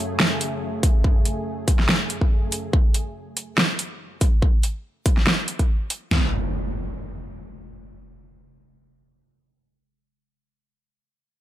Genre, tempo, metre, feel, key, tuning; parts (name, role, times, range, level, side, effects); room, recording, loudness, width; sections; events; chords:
heavy wobble dubstep; 142 BPM; 4/4; swing 54% on 16ths, half-time; F# minor; A4 = 440 Hz
lush unison pad; sustained chords; 0.0-2.7 s; F#2 to G#4; -30 LUFS; equal; chorus, vintage 12-bit sampler grit, sidechain pumping
big-room dance drum kit; drums; 0.2-6.0 s; hi-hat, snare drum; -21 LUFS; equal; overdrive
dubstep drum kit; drums; 0.8-6.2 s; kick drum, snare drum, toms; -18 LUFS; equal; overdrive
impact; sound effects; 6.1-9.2 s; -28 LUFS; equal
little or no reverb; -20 LUFS; side -13 dB against mid
0.0-6.1 A section; 6.1-9.5 B section
0.0 F#madd9; 6.1 N.C.